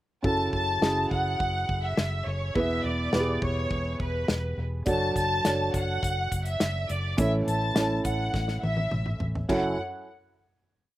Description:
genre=piano-driven pop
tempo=104 BPM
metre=4/4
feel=straight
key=F# minor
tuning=A4 = 440 Hz
part: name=dark concert grand piano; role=accompaniment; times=0.2-9.8 s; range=F#2 to C#5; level=-30 LUFS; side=right 1 dB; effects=slapback echo
part: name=vintage muted fingered electric bass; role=bass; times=0.2-9.8 s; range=E1 to A1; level=-31 LUFS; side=equal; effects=none
part: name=natural country drum kit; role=drums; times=0.2-9.6 s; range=crash cymbal, hi-hat, kick drum, snare drum, toms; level=-30 LUFS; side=left 1 dB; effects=none
part: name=rich studio violin section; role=melody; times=0.3-9.8 s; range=B4 to A5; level=-30 LUFS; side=equal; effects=slapback echo
room=little or no reverb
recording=recorded outdoors, with no room sound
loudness=-25 LUFS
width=side -15 dB against mid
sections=0.2-9.5 verse; 9.5-11.0 final chord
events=drum fill 8.3-9.5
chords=0.2 F#m7; 2.6 E; 4.9 Dmaj7/F#; 7.2 A; 9.5 F#m7

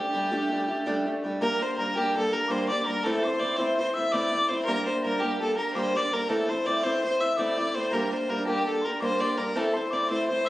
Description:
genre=celtic folk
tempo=111 BPM (dotted quarters)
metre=9/8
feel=straight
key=G dorian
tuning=A4 = 440 Hz
part: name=warm fiddle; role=melody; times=0.0-10.5 s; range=G4 to E5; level=-27 LUFS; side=left 1 dB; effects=none
part: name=fingerpicked acoustic archtop guitar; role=accompaniment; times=0.0-10.5 s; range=A2 to G4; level=-28 LUFS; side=right 1 dB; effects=none
part: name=mellow mid whistle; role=second line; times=1.4-10.5 s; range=G5 to E6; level=-34 LUFS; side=left 3 dB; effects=none
room=moderate small room reverb, RT60 0.5 s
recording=recorded on a phone in the room, studio reverb, compression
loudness=-24 LUFS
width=side -16 dB against mid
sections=0.0-1.4 A section; 1.4-10.5 B section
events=none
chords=0.0 Gsus2; 1.4 Gm; 3.0 Am; 4.7 Gm; 6.3 Am; 7.9 Gm; 9.5 Am

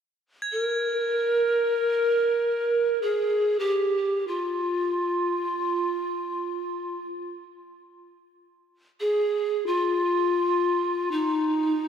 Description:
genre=world meditative, free-time meditation music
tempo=free time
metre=none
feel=none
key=unclear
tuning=A4 = 440 Hz
part: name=crotales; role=texture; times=0.4-8.3 s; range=Ab6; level=-34 LUFS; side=right 2 dB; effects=none
part: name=breathy reedy pan flute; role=melody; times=0.5-11.9 s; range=Eb4 to Bb4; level=-23 LUFS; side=equal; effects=tape echo
room=wet echo chamber reverb, RT60 2.6 s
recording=echo-heavy mix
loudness=-23 LUFS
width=side -8 dB against mid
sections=0.0-11.9 A section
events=none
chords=none

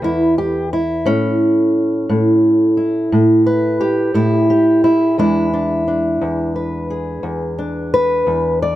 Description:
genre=acoustic country blues, solo or duo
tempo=58 BPM (dotted quarters)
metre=12/8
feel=straight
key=E mixolydian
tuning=A4 = 440 Hz
part: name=fingerpicked old ladder-braced acoustic guitar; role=solo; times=0.0-8.8 s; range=E2 to D5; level=-14 LUFS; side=equal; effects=none
room=little or no reverb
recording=close, detailed microphones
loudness=-14 LUFS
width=side -14 dB against mid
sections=0.0-8.8 A section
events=none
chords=0.0 E5; 1.1 A7; 5.2 E7

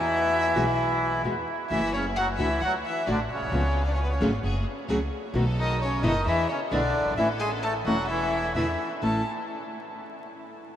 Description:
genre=tango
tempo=131 BPM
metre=4/4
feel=rubato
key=A major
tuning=A4 = 443 Hz
part: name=bandoneon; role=melody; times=0.0-9.2 s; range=C#3 to A4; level=-27 LUFS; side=equal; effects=none
part: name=warm violin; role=second line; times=0.0-9.2 s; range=B4 to A5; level=-32 LUFS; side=left 2 dB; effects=none
part: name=upright bass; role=bass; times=0.0-9.2 s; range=E1 to E2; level=-30 LUFS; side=equal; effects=none
part: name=nylon-string guitar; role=accompaniment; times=0.5-9.2 s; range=A2 to G#4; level=-31 LUFS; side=equal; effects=none
part: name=bright studio string section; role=stabs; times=1.7-9.2 s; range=A3 to A4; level=-38 LUFS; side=right 1 dB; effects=none
room=wet huge ambient reverb, RT60 8.1 s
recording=in a vast, echoing space, vinyl crackle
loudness=-23 LUFS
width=side -10 dB against mid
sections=0.0-9.0 A section; 9.0-10.8 B section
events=none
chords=0.0 E5; 1.7 F#m7; 2.6 D; 3.5 C#7; 4.4 F#madd9; 5.3 B7; 6.3 E7; 7.2 A; 8.5 E7; 9.0 A

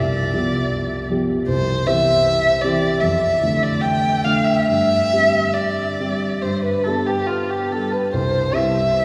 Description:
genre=classical, romantic duo for violin and grand piano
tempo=68-80 BPM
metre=4/4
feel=rubato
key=unclear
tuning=A4 = 440 Hz
part: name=dark violin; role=melody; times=0.0-9.0 s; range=F4 to G5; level=-21 LUFS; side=equal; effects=none
part: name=warm concert grand piano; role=accompaniment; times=0.0-9.0 s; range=C2 to G4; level=-23 LUFS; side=equal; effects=none
room=wet cathedral reverb, RT60 4.9 s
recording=recorded in a church or concert hall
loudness=-19 LUFS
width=mono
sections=0.0-9.0 A section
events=none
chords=0.0 G7/C; 1.5 C; 3.0 Dm/F; 4.7 Gsus4; 6.4 G; 8.1 C

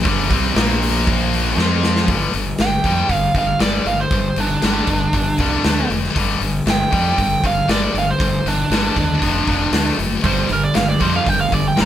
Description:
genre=hard rock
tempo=118 BPM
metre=4/4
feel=straight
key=G minor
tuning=A4 = 440 Hz
part: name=sludgy distorted guitar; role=riff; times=0.0-2.1, 10.2-11.9 s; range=G2 to F4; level=-23 LUFS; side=right 6 dB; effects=overdrive
part: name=fuzz fingered electric bass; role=bass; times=0.0-11.9 s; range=F1 to F2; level=-22 LUFS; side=equal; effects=overdrive
part: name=heavy high-gain guitar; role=riff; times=0.1-11.9 s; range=F2 to F4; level=-20 LUFS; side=left 5 dB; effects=distortion
part: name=big rock drum kit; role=drums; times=0.1-11.9 s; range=hi-hat, kick drum, snare drum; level=-21 LUFS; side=equal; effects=none
part: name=nasal lead guitar with a parked wah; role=melody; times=2.6-11.9 s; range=D4 to Bb5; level=-20 LUFS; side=right 3 dB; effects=overdrive
room=light reverb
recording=band playing live in one room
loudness=-15 LUFS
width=side -11 dB against mid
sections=0.0-2.1 A section; 2.1-11.9 B section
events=drum fill 1.6-2.1; lead electric guitar solo 2.1-11.9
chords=0.0 Bb5; 1.6 F5; 2.1 G5; 5.6 D5; 6.2 G5; 9.2 F5; 9.7 D5; 10.2 G5

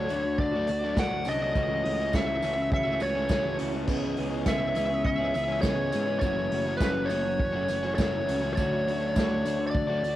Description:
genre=indie rock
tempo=102 BPM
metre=4/4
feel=straight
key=unclear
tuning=A4 = 440 Hz
part: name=smooth overdriven lead guitar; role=melody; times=0.0-10.2 s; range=B4 to F#5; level=-29 LUFS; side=left 1 dB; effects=none
part: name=glockenspiel with hard plastic mallets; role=second line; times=0.0-10.2 s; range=F#6 to D7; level=-42 LUFS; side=right 8 dB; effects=cassette tape
part: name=electric guitar through a small old amp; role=riff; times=0.0-10.2 s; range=E3 to G#4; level=-34 LUFS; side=right 7 dB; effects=analog chorus, cassette tape
part: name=overdriven electric guitar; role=riff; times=0.0-10.1 s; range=F#2 to D4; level=-33 LUFS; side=left 6 dB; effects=cassette tape
part: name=fuzz picked electric bass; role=bass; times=0.0-10.2 s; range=F#1 to G#2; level=-33 LUFS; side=right 1 dB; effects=overdrive
part: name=unplugged drum kit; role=drums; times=0.1-10.2 s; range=crash cymbal, hi-hat, kick drum, snare drum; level=-30 LUFS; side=equal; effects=none
part: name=tambourine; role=percussion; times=0.1-10.2 s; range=none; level=-49 LUFS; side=right 9 dB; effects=none
room=little or no reverb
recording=home recording on cassette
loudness=-25 LUFS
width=side -14 dB against mid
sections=0.0-10.2 A section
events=none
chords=0.0 Dmaj7; 1.6 A6/C#; 3.9 C#m7; 6.2 F#m7; 8.6 Dmaj7

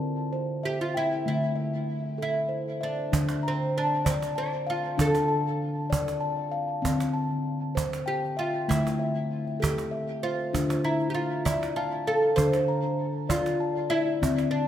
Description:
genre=world meditative, meditative tuned percussion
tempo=65 BPM (dotted quarters)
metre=6/8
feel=straight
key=D minor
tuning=A4 = 440 Hz
part: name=steel tongue drum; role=arpeggios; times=0.0-14.7 s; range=D3 to Bb5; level=-28 LUFS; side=left 2 dB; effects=diffuse ambient delay
part: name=oud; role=melody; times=0.7-14.7 s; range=C4 to C5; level=-28 LUFS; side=right 1 dB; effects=diffuse ambient delay
part: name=cajon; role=percussion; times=3.1-14.5 s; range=none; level=-29 LUFS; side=right 3 dB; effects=none
room=wet echo chamber reverb, RT60 1.4 s, studio reverb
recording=none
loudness=-25 LUFS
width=side -10 dB against mid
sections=0.0-3.1 A section; 3.1-14.7 B section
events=none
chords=0.0 C/D; 3.1 Dm; 6.8 C/D; 8.7 Am/D; 10.5 Dm

